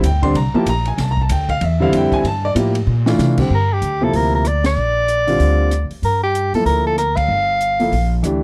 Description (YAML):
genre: modal jazz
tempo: 190 BPM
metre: 4/4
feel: swing 61% on 8ths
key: G dorian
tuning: A4 = 438 Hz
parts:
  - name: warm grand piano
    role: accompaniment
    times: 0.0-8.4 s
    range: C3 to C6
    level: -21 LUFS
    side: equal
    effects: none
  - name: upright bass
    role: bass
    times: 0.0-8.4 s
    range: G1 to C3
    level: -21 LUFS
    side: equal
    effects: none
  - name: compact cocktail drum kit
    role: drums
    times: 0.0-8.3 s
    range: crash cymbal, hi-hat, kick drum, ride cymbal, rim click, snare drum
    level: -30 LUFS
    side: equal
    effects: none
  - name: clear soprano saxophone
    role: melody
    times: 3.5-8.1 s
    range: G4 to F5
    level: -20 LUFS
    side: equal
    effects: none
room: studio ambience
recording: dry, close 1970s-style studio recording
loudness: -17 LUFS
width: mono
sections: 0.0-3.5 A section; 3.5-8.4 B section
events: drum fill 2.9-3.2; band accent 4.6, 7.1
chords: 0.0 Gm9